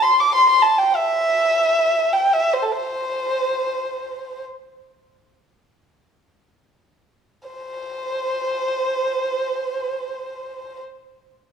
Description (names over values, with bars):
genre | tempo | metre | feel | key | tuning
chinese traditional | free time | none | none | C gong mode | A4 = 438 Hz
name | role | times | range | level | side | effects
dark erhu | solo | 0.0-4.4, 7.5-10.8 s | A4 to D6 | -18 LUFS | equal | none
room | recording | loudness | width
moderate scoring stage reverb, RT60 1.6 s | small room ambience | -18 LUFS | side -7 dB against mid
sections
0.0-7.5 A section; 7.5-11.5 B section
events
slowing down 3.1-7.5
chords
none